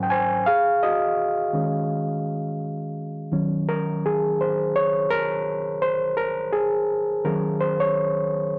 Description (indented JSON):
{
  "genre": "R&B",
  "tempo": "84 BPM",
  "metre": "4/4",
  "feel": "swing 56% on 16ths",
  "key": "Eb dorian",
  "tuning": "A4 = 440 Hz",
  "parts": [
    { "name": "overdriven reed electric piano", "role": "solo", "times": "0.0-8.6 s", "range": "Ab2 to Ab5", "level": "-24 LUFS", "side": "equal", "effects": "none" }
  ],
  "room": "wet studio reverb, RT60 0.7 s",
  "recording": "none",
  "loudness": "-24 LUFS",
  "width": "mono",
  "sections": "0.0-3.3 A section; 3.3-8.6 B section",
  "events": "reed electric piano solo 0.0-3.3, 3.3-8.6",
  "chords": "0.5 Eb7sus4; 3.3 Ebm7"
}